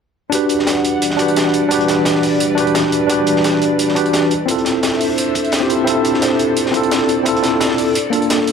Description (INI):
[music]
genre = liquid drum and bass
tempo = 173 BPM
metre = 4/4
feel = swing 53% on 16ths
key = E minor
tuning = A4 = 440 Hz
[part]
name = tine electric piano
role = accompaniment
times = 0.3-8.5 s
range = Bb3 to B4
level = -15 LUFS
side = equal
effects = overdrive, fast stereo tremolo, low-pass filter, dub echo
[part]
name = airy breathy pad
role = sustained chords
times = 0.5-8.5 s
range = E3 to F#5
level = -21 LUFS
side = equal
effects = chorus, sidechain pumping
[part]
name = crunchy breakbeat drum kit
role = drums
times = 0.3-8.5 s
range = hi-hat, snare drum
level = -23 LUFS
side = equal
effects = high-pass filter on hats, small room reverb, high-pass filter on snare, high-pass filter on room
[part]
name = electronic hi-hat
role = drums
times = 0.3-8.5 s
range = none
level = -26 LUFS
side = right 5 dB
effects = small room reverb
[part]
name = electronic kick drum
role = drums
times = 0.3-8.5 s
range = none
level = -31 LUFS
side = equal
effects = high-pass filter on kick, small room reverb
[sound]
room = wet plate reverb, RT60 1.3 s, studio reverb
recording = none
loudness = -13 LUFS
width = side -6 dB against mid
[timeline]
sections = 0.3-8.5 A section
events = none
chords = 0.3 Em9; 4.3 Dm9; 8.0 Gm9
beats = | 0.32 0.67 1.02 1.36 | 1.71 2.06 2.40 2.75 | 3.10 3.45 3.79 4.14 | 4.49 4.83 5.18 5.53 | 5.87 6.22 6.57 6.91 | 7.26 7.61 7.95 8.30